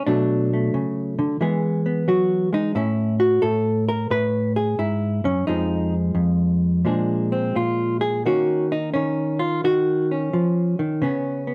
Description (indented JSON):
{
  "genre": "solo jazz",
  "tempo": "88 BPM",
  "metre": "4/4",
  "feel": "swing 67% on 8ths, rubato",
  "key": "unclear",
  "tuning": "A4 = 439 Hz",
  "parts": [
    { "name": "hollow-body jazz guitar", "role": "solo", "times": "0.0-11.5 s", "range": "F2 to Cb5", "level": "-22 LUFS", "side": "equal", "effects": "none" }
  ],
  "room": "wet studio reverb, RT60 0.8 s",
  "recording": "band playing live in one room",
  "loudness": "-22 LUFS",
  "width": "mono",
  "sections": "0.0-11.5 A section",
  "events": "hollow-body jazz guitar solo 0.0-11.5",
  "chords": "0.1 Cbm7; 1.4 E; 2.8 Amaj7; 5.5 Fm7; 6.9 Bb7; 8.3 Eb5; 11.0 Db7(no3)",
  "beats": "| 0.07 0.75 1.42 2.08 | 2.76 3.43 4.11 4.80 | 5.48 6.17 6.86 7.56 | 8.26 8.95 9.64 10.33 | 11.01"
}